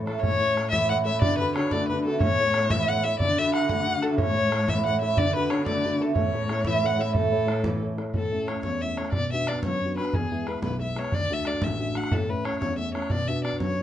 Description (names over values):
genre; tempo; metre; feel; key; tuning
celtic folk, Celtic jig; 121 BPM (dotted quarters); 6/8; straight; A major; A4 = 440 Hz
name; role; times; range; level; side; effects
cimbalom; second line; 0.0-11.6 s; A3 to F#4; -30 LUFS; right 7 dB; none
dark concert grand piano; accompaniment; 0.0-13.8 s; A1 to C#5; -30 LUFS; left 1 dB; none
dark cello; bass; 0.0-8.1 s; A2 to D3; -29 LUFS; equal; none
dark violin; melody; 0.1-13.8 s; G#4 to F#5; -27 LUFS; left 3 dB; none
bodhran; percussion; 0.1-13.8 s; none; -30 LUFS; equal; none
room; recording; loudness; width
moderate studio reverb, RT60 0.5 s; nothing above 10.7 kHz; -23 LUFS; side -11 dB against mid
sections
0.2-8.1 A section; 8.1-13.8 B section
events
none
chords
0.2 A; 1.2 D; 2.2 A; 3.2 D; 4.2 A; 5.2 D; 6.2 A; 9.1 Bm; 10.1 E; 11.1 D; 12.1 A; 13.1 Bm